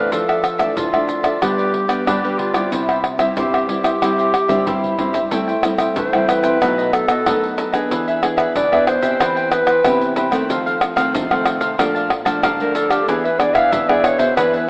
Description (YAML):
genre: samba and choro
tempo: 93 BPM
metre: 4/4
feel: straight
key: C major, A minor from 5.3 s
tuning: A4 = 440 Hz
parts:
  - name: clear clarinet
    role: second line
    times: 0.0-14.6 s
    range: E4 to F5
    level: -22 LUFS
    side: equal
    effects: none
  - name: cavaquinho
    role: accompaniment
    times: 0.0-14.7 s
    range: D4 to A5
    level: -24 LUFS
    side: equal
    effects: none
  - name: nylon-string guitar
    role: accompaniment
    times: 0.0-14.7 s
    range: F2 to G#4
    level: -25 LUFS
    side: equal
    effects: none
  - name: nylon-string guitar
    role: bass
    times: 0.0-14.7 s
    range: Bb2 to B3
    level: -30 LUFS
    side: equal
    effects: none
  - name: egg shaker, surdo, pandeiro and tamborim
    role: percussion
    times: 0.1-14.7 s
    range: none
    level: -23 LUFS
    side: equal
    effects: none
room: wet lush hall reverb, RT60 2.7 s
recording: rough home demo mix, AM radio sound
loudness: -18 LUFS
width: mono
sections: 0.0-5.3 A section; 5.3-14.7 B section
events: drum fill 4.3-5.3; clarinet solo 5.3-14.7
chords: 0.1 Dmadd9/F; 1.4 G; 2.7 C; 5.3 Am7; 6.6 B7; 7.9 E7; 9.2 Cmaj7/E; 10.5 F7; 11.8 Bbmaj7; 13.1 E7